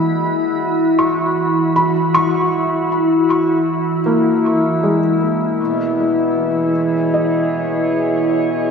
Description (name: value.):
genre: ambient.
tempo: 78 BPM.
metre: 4/4.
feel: straight.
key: unclear.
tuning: A4 = 436 Hz.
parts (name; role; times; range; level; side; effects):
glassy FM pad; sustained chords; 0.0-8.7 s; E3 to B5; -16 LUFS; equal; ensemble chorus, built-in reverb.
felt-muted upright piano; arpeggios; 0.0-8.7 s; G#3 to C#6; -21 LUFS; equal; ping-pong delay.
pedal harmonium; drone; 5.6-8.7 s; B2 to E3; -22 LUFS; left 1 dB; none.
room: wet lush hall reverb, RT60 2.7 s.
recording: dreamy mix soaked in reverb.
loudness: -14 LUFS.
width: side -6 dB against mid.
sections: 0.0-8.7 A section.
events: filter sweep on ambient pad 0.0-8.7.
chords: 0.0 Badd9.